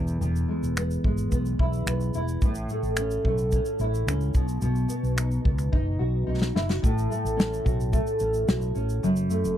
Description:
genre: acoustic pop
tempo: 109 BPM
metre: 4/4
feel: straight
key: unclear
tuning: A4 = 440 Hz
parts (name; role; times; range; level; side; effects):
- nylon-string guitar; accompaniment; 0.0-9.6 s; E2 to F#4; -27 LUFS; equal; double-tracked left and right
- mellow fretless electric bass; bass; 0.0-9.6 s; E1 to C#2; -27 LUFS; equal; none
- natural country drum kit; drums; 0.1-9.6 s; finger snaps, kick drum, shaker, snare drum; -26 LUFS; equal; none
room: little or no reverb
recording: dry, close 1970s-style studio recording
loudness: -23 LUFS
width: side -11 dB against mid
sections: 0.0-6.8 A section; 6.8-9.6 B section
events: drum fill 5.7-6.8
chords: 0.0 E; 2.4 A; 4.3 B; 6.8 A6; 9.0 F#m

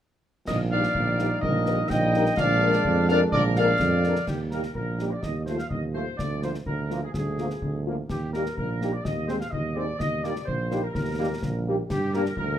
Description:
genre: military-style march for wind band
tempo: 126 BPM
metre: 2/4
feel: straight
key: Eb major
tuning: A4 = 440 Hz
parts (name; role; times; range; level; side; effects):
- mellow cornet; melody; 0.5-12.6 s; G4 to G5; -30 LUFS; right 1 dB; none
- warm woodwind section; second line; 0.5-12.6 s; G4 to F5; -31 LUFS; left 2 dB; none
- clear trombone section; sustained chords; 0.5-12.2 s; F3 to Eb4; -33 LUFS; right 1 dB; none
- warm tuba; bass; 0.5-12.6 s; Bb1 to G2; -27 LUFS; right 2 dB; none
- concert snare drum, clash cymbals and concert bass drum; drums; 0.5-12.6 s; none; -33 LUFS; left 1 dB; none
- dark French horn section; accompaniment; 0.7-12.2 s; G3 to Bb4; -29 LUFS; left 4 dB; none
room: moderate large studio reverb, RT60 1.1 s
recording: close, detailed microphones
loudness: -23 LUFS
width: side -10 dB against mid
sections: 0.5-4.3 A section; 4.3-12.6 B section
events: none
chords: 0.5 Eb/Bb; 2.4 Bb7; 4.3 Eb; 5.2 F7/Eb; 6.2 Bb7/D; 8.1 Eb; 9.0 Ab/Eb; 10.0 Eb; 11.9 Gm

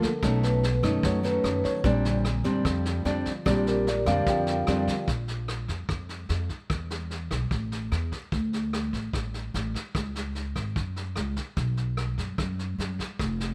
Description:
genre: bossa nova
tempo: 148 BPM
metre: 4/4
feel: straight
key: unclear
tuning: A4 = 440 Hz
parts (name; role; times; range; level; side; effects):
- mellow tine electric piano; accompaniment; 0.0-5.1 s; D3 to G5; -30 LUFS; equal; none
- nylon-string guitar; accompaniment; 0.0-5.1 s; Bb2 to D#4; -30 LUFS; equal; none
- vintage brush drum kit; drums; 0.0-13.5 s; kick drum, rim click, snare drum; -35 LUFS; equal; none
- upright bass; bass; 0.2-13.5 s; F1 to F#2; -32 LUFS; equal; none
room: light reverb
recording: none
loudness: -28 LUFS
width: mono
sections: 0.0-5.1 A section; 5.1-13.5 B section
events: tine electric piano solo 0.0-5.1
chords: 0.2 B9; 1.8 Bb69; 5.1 Bb5; 6.7 E5; 7.5 A5; 8.3 D5; 10.0 Db5; 10.8 Gb5; 11.6 B5

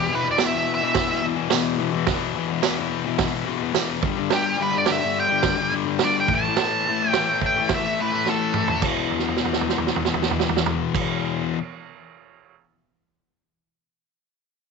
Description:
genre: garage rock duo or trio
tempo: 106 BPM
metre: 4/4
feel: straight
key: unclear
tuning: A4 = 440 Hz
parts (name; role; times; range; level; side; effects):
- octave-fuzz lead guitar; melody; 0.0-8.8 s; G4 to A5; -23 LUFS; right 2 dB; distortion, tape echo
- fuzz guitar; riff; 0.0-11.6 s; E2 to A3; -24 LUFS; left 11 dB; distortion
- vintage drum kit; drums; 0.4-12.6 s; crash cymbal, hi-hat, kick drum, snare drum, toms; -25 LUFS; right 9 dB; none
- tambourine; percussion; 0.4-3.9 s; none; -32 LUFS; right 15 dB; none
room: light reverb, studio ambience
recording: 1960s-style stereo with parts hard left and right, nothing above 7.8 kHz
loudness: -20 LUFS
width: side -5 dB against mid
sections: 0.0-8.8 A section; 8.8-11.1 B section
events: lead electric guitar solo 0.0-8.8; drum fill 8.3-8.8, 9.1-10.9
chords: 0.0 E5; 4.0 G5; 6.3 A5; 8.8 E5

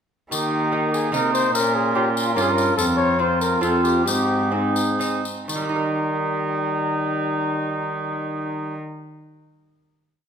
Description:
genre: classical, renaissance-style consort dance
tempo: 121-147 BPM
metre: 3/4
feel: straight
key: Eb mixolydian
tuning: A4 = 435 Hz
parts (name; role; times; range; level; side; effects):
- mellow cornet; melody; 0.3-8.7 s; Eb4 to Db5; -25 LUFS; left 5 dB; none
- mellow cor anglais; second line; 0.3-8.8 s; Eb4 to F4; -25 LUFS; right 6 dB; none
- clear trombone; accompaniment; 0.3-8.8 s; G3 to Db4; -28 LUFS; left 2 dB; none
- lute; accompaniment; 0.3-9.0 s; F2 to Bb4; -28 LUFS; right 4 dB; none
- warm cello; bass; 0.3-8.8 s; F2 to Eb3; -27 LUFS; right 1 dB; none
- tambourine; percussion; 0.3-5.7 s; none; -31 LUFS; left 6 dB; none
room: moderate recital hall reverb, RT60 1.5 s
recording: minimal, uncompressed stereo recording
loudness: -19 LUFS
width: side -7 dB against mid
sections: 0.3-5.5 A section; 5.5-8.5 final chord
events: slowing down 2.2-5.5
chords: 0.3 Eb; 1.5 Bbm; 2.8 F5; 4.1 Ab; 5.5 Eb

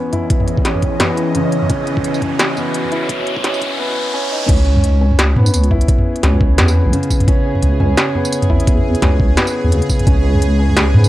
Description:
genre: half-time drum and bass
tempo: 172 BPM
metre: 4/4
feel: swing 57% on 16ths, half-time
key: C# minor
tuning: A4 = 441 Hz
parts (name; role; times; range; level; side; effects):
- bowed-like drone; sustained chords; 0.0-11.1 s; E3 to D#5; -23 LUFS; equal; built-in reverb, phaser, sidechain pumping
- felt-muted upright piano; arpeggios; 0.0-11.1 s; C#3 to E4; -20 LUFS; equal; low-pass filter, tape echo
- riser; sound effects; 0.1-4.5 s; none; -25 LUFS; equal; none
- industrial drum kit; drums; 0.1-11.1 s; crash cymbal, hi-hat, snare drum, tambourine, toms; -18 LUFS; equal; none
- electronic kick drum; drums; 0.3-10.1 s; none; -16 LUFS; equal; none
- deep soft wobble bass; bass; 4.5-11.1 s; B1 to G#2; -13 LUFS; equal; chorus
room: little or no reverb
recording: dry, gritty hardware recording, high-pass filter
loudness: -12 LUFS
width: side -15 dB against mid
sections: 0.0-4.5 A section; 4.5-11.1 B section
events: build-up 0.0-4.5; filter sweep on synth drone 0.0-4.5; filter sweep on felt piano 0.0-4.5; filter sweep 0.0-4.5; riser 0.1-4.5; drop 4.5-11.1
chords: 0.0 C#madd9; 4.5 C#m

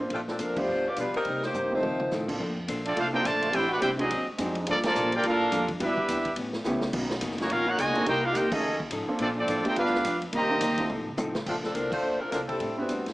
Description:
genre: jazz, big band swing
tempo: 211 BPM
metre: 4/4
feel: swing 59% on 8ths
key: Bb major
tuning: A4 = 440 Hz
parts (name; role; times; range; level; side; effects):
- clear baby grand piano; accompaniment; 0.0-12.9 s; G3 to A4; -33 LUFS; right 1 dB; none
- upright bass; bass; 0.0-13.1 s; F1 to C3; -38 LUFS; equal; none
- warm saxophone section; melody; 0.1-2.3, 11.5-13.1 s; E3 to D5; -28 LUFS; equal; none
- archtop guitar, miked and amplified; accompaniment; 0.1-13.1 s; F2 to C5; -35 LUFS; left 1 dB; none
- swinging big-band drum kit; drums; 0.1-13.1 s; crash cymbal, hi-hat, kick drum, ride cymbal, snare drum, toms; -36 LUFS; equal; none
- warm trombone section; second line; 1.7-10.9 s; A#2 to G4; -30 LUFS; right 1 dB; none
- brilliant trumpet section; melody; 2.9-10.9 s; Bb3 to Bb5; -27 LUFS; equal; none
room: moderate large studio reverb, RT60 1.2 s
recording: small speaker sound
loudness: -25 LUFS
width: side -18 dB against mid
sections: 0.0-2.4 A section; 2.4-11.5 B section; 11.5-13.1 A section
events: band accent 0.5, 4.8, 8.5, 11.9; drum fill 1.5-2.1, 6.7, 10.9-11.5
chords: 0.1 Bbmaj9; 0.7 G7; 1.3 Cm7; 1.8 F7; 2.4 Bbmaj9; 3.5 Am11; 4.1 Ab7#11; 4.7 Gm9; 5.8 Em7; 6.4 A9; 6.9 Bmaj9; 8.1 Cm7; 8.6 F7alt; 9.2 Bbmaj9; 9.8 G7; 10.3 Cm7; 10.9 F7; 11.5 Bbmaj9; 12.6 Am11

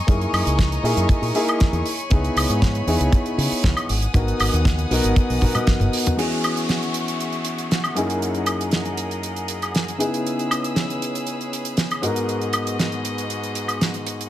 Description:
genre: nu-disco, nu disco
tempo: 118 BPM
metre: 4/4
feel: straight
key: unclear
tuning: A4 = 440 Hz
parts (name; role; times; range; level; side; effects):
- clear studio violin section; sustained chords; 0.0-14.3 s; B3 to E6; -30 LUFS; left 1 dB; vintage 12-bit sampler grit, sidechain pumping, low-pass filter
- dark baby grand piano; accompaniment; 0.1-14.3 s; F#2 to A#4; -24 LUFS; left 1 dB; sidechain pumping, ping-pong delay
- fingered electric bass with an envelope filter; bass; 0.1-5.9 s; F#1 to C#3; -22 LUFS; equal; none
- damped 70s drum kit; drums; 0.1-14.3 s; crash cymbal, hi-hat, snare drum, toms, woodblock; -24 LUFS; right 1 dB; studio reverb
- kick drum; drums; 0.1-5.8 s; none; -17 LUFS; equal; studio reverb
- downlifter; sound effects; 6.2-10.2 s; none; -34 LUFS; equal; none
room: light reverb, studio reverb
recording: none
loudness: -19 LUFS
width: side -13 dB against mid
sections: 0.0-6.2 A section; 6.2-14.3 B section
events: drum fill 5.4-6.2; filter sweep on violin section 6.2-14.3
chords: 0.0 F#13; 1.9 C#m7; 3.9 G#m7; 6.2 E69; 8.0 F#13; 10.0 C#m7; 12.0 G#m7

